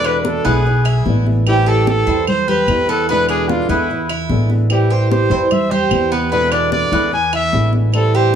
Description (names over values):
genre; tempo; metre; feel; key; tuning
latin, Cuban son and guajira; 148 BPM; 4/4; straight; unclear; A4 = 438 Hz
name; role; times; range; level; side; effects
clear trumpet; melody; 0.0-8.4 s; E4 to G#5; -18 LUFS; right 1 dB; none
flamenco guitar; accompaniment; 0.0-8.4 s; B2 to E4; -22 LUFS; left 1 dB; none
Cuban tres; arpeggios; 0.0-8.4 s; B3 to C5; -20 LUFS; right 1 dB; none
upright bass; bass; 0.0-8.4 s; A1 to E2; -18 LUFS; equal; none
claves; percussion; 0.0-8.1 s; none; -25 LUFS; right 2 dB; none
congas; percussion; 0.0-8.3 s; none; -24 LUFS; left 2 dB; none
room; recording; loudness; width
light reverb; none; -13 LUFS; side -8 dB against mid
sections
0.0-8.4 A section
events
none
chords
0.0 E7; 1.5 Am7; 3.1 E7; 4.7 Am7; 6.3 E7